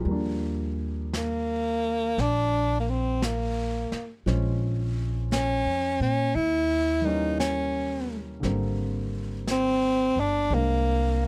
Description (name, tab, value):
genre	jazz ballad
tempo	57 BPM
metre	4/4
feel	swing 66% on 8ths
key	Eb major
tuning	A4 = 437 Hz
part	warm baby grand piano	accompaniment	0.0-11.3 s	D3 to C5	-35 LUFS	equal	none
part	upright bass	bass	0.1-11.3 s	G1 to Bb2	-31 LUFS	equal	none
part	vintage brush drum kit	drums	0.1-11.3 s	brushed snare drum, hi-hat, snare drum	-39 LUFS	equal	none
part	breathy tenor saxophone	melody	1.2-11.3 s	Bb3 to Fb4	-28 LUFS	equal	none
room	little or no reverb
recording	close, detailed microphones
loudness	-27 LUFS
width	mono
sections	0.1-11.3 A section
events	none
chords	0.1 Ebmaj9; 4.3 Bbm7; 6.4 Eb7b9; 8.4 Abmaj9#11